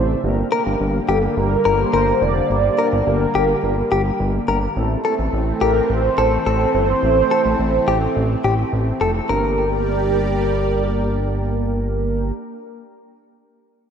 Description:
synth-pop; 106 BPM; 4/4; straight; G dorian; A4 = 440 Hz
mellow synth brass; melody; 0.0-12.3 s; G4 to D5; -21 LUFS; right 2 dB; chorus, ping-pong delay
mellow synth brass; accompaniment; 0.0-12.3 s; A3 to C5; -26 LUFS; right 2 dB; chorus
lush unison pad; sustained chords; 0.0-12.3 s; C3 to D5; -25 LUFS; right 1 dB; chorus, phaser
fat analog bass; bass; 0.0-12.3 s; F1 to A1; -21 LUFS; equal
direct-recorded clean electric guitar; second line; 0.5-11.0 s; G4 to Bb4; -22 LUFS; left 4 dB; wide subtle chorus, ping-pong delay
wet lush hall reverb, RT60 2.5 s; rough home demo mix; -16 LUFS; side -7 dB against mid
0.2-9.3 A section; 9.3-11.6 B section
0.2 Gm; 4.8 Am; 9.3 Gm

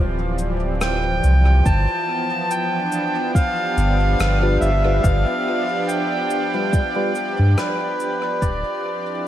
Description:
ambient dub; 71 BPM; 4/4; swing 55% on 16ths; A4 = 444 Hz
warm analog pad; sustained chords; 0.0-9.3 s; E3 to D5; -25 LUFS; right 1 dB; chorus, tremolo
bright tine electric piano; stabs; 0.0-7.1 s; G3 to B4; -29 LUFS; left 3 dB; phaser, dub echo
warm sub bass; bass; 0.0-8.6 s; D1 to G2; -18 LUFS; equal
cabasa and rim click; drums; 0.4-8.6 s; -31 LUFS; left 1 dB; dub echo
melodica; melody; 0.8-9.3 s; B4 to A5; -23 LUFS; equal; dub echo
electronic kick drum; drums; 1.7-8.6 s; -18 LUFS; equal
light reverb, small room reverb; vinyl crackle; -17 LUFS; side -12 dB against mid
0.0-9.3 A section
fade-out 6.2-9.3
0.0 Dm11; 1.7 G7; 8.4 Dm11

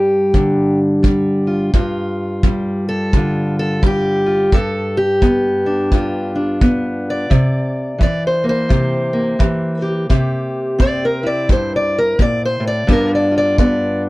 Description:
acoustic country blues, solo or duo; 86 BPM; 4/4; swing 61% on 8ths; A4 = 440 Hz
fingerpicked steel-string acoustic guitar; melody; 0.0-14.1 s; G2 to D5; -15 LUFS; equal
kick drum; drums; 0.3-13.8 s; -16 LUFS; equal
little or no reverb; -14 LUFS; side -19 dB against mid
0.0-14.1 A section
steel-string acoustic guitar solo 0.0-14.1
0.0 G7; 7.3 C7; 12.9 G7

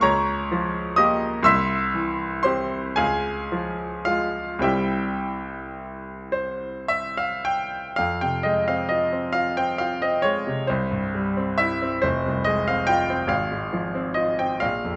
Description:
classical, romantic nocturne for solo piano; 35-48 BPM (dotted quarters); 12/8; rubato; F minor; A4 = 442 Hz
clear grand piano; solo; 0.0-15.0 s; F1 to E6; -24 LUFS; equal
moderate recital hall reverb, RT60 1.6 s; nothing above 8.0 kHz; -24 LUFS; mono
0.0-8.0 A section; 8.0-15.0 B section
0.0 Gm7b5/Db; 1.5 C; 3.0 Db; 4.6 C; 8.0 Fm; 10.7 C; 12.0 Fm; 13.3 Fm/Ab

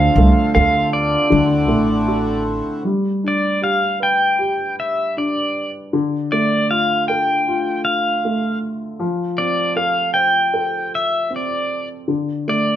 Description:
acoustic folk-pop ballad; 78 BPM; 4/4; straight; A4 = 441 Hz
pedal steel guitar; melody; 0.0-12.8 s; D5 to G5; -18 LUFS; equal
warm baby grand piano; accompaniment; 0.0-12.8 s; D3 to C5; -21 LUFS; left 1 dB
pedal harmonium; sustained chords; 0.0-2.8 s; D3 to A4; -24 LUFS; right 1 dB
felt-muted upright piano; arpeggios; 0.0-1.6 s; B4 to C5; -36 LUFS; right 3 dB
upright bass; bass; 0.0-2.6 s; A1 to D2; -18 LUFS; right 1 dB
wet studio reverb, RT60 0.8 s; band playing live in one room; -16 LUFS; side -11 dB against mid
0.0-2.8 A section; 2.8-12.8 B section
0.0 F; 1.3 D7; 2.8 G; 5.9 Dm; 9.0 Fadd9; 12.1 D5

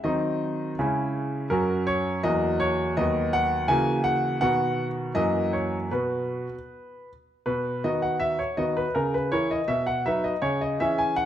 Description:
classical-period piano sonatina; 82 BPM; 2/4; straight; B major; A4 = 440 Hz
bright baby grand piano; solo; 0.0-11.3 s; D#2 to G#5; -23 LUFS; equal
moderate recital hall reverb, RT60 1.6 s; dark, warm production; -23 LUFS; side -10 dB against mid
0.0-7.5 A section; 7.5-11.3 B section
0.1 Cdim/Eb; 0.8 C#m; 1.5 F#; 2.2 F#7/E; 3.0 B/D#; 3.7 F#7/C#; 4.4 B; 5.2 F#7; 5.9 B5; 7.5 B; 8.9 A#dim/C#; 9.7 B; 10.4 C#m

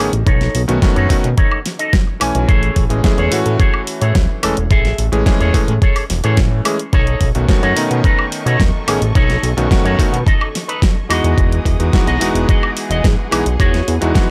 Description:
nu-disco, nu disco; 108 BPM; 4/4; straight; B mixolydian; A4 = 440 Hz
bright electric grand piano; accompaniment; 0.0-14.3 s; D#3 to G#5; -22 LUFS; equal; tape echo
fat analog bass; bass; 0.0-14.1 s; E1 to B2; -20 LUFS; equal; tube saturation, sidechain pumping
electric guitar with an envelope filter; riff; 0.1-13.9 s; D#4 to E5; -24 LUFS; equal; subtle chorus, low-pass filter, tape echo
pop drum kit; drums; 0.1-14.3 s; hi-hat, snare drum, woodblock; -25 LUFS; equal
electronic kick drum; drums; 0.3-14.3 s; -17 LUFS; equal; overdrive
rich studio string section; sustained chords; 6.9-14.3 s; G#4 to D#6; -32 LUFS; equal
little or no reverb; dry, gritty hardware recording; -15 LUFS; mono
0.0-14.3 A section
0.0 B9; 2.5 Amaj7; 6.9 B9; 11.1 Emaj9

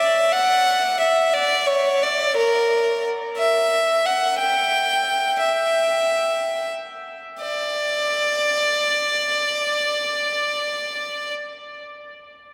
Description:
rock; 59 BPM (dotted quarters); 6/8; straight; D major; A4 = 441 Hz
bright violin; melody; 0.0-11.3 s; Bb4 to G5; -21 LUFS; equal; analog delay
wet cathedral reverb, RT60 6.7 s; dreamy mix soaked in reverb; -21 LUFS; mono
0.0-7.4 A section; 7.4-11.5 B section

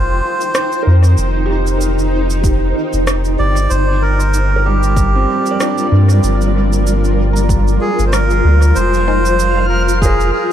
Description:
ambient dub; 95 BPM; 4/4; swing 56% on 16ths; F dorian; A4 = 441 Hz
melodica; melody; 0.0-10.5 s; G4 to D5; -19 LUFS; right 2 dB; dub echo
granular cloud pad; sustained chords; 0.0-10.5 s; G3 to G5; -19 LUFS; equal; built-in reverb
soft dub sub bass; bass; 0.0-10.3 s; F1 to G2; -14 LUFS; equal
electronic cabasa and rim click; drums; 0.4-10.3 s; -24 LUFS; right 2 dB; overdrive, dub echo
felt-muted upright piano; arpeggios; 0.8-10.5 s; G3 to Bb5; -24 LUFS; right 4 dB; tape echo
electronic kick drum; drums; 2.4-10.2 s; -17 LUFS; equal
backwards swelling texture; texture; 9.1-10.5 s; F5; -25 LUFS; equal; built-in reverb
filtered dub chord stab; stabs; 9.1-10.5 s; Ab3 to C5; -23 LUFS; left 7 dB; phaser, dub echo
light reverb; -11 LUFS; side -10 dB against mid
0.0-8.8 A section; 8.8-10.5 B section
0.0 F5; 3.7 Gm7; 8.8 Fm7

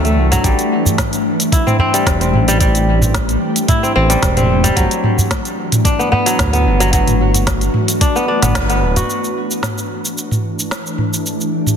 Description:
organic downtempo; 111 BPM; 4/4; swing 53% on 16ths; A dorian; A4 = 440 Hz
ethereal airy pad; sustained chords; 0.0-11.8 s; E3 to G4; -20 LUFS; left 1 dB; ensemble chorus, built-in reverb, sidechain pumping
kora; arpeggios; 0.0-10.6 s; F#3 to A4; -18 LUFS; equal; tape echo
smooth gliding synth bass; bass; 0.0-9.0 s; D1 to D2; -16 LUFS; equal; tube saturation, sidechain pumping
organic electronic drum kit; drums; 0.0-11.8 s; hi-hat, shaker, snare drum, toms; -19 LUFS; right 1 dB; soft clipping on snare
udu; percussion; 0.3-9.1 s; -19 LUFS; right 1 dB
electronic kick drum; drums; 0.4-8.7 s; -17 LUFS; equal
moderate lush hall reverb, RT60 2.4 s; dense, heavily limited modern master; -13 LUFS; side -8 dB against mid
0.0-9.1 A section; 9.1-11.8 B section
band accent 8.6
0.4 Am7; 4.8 Gmaj7; 9.1 A5

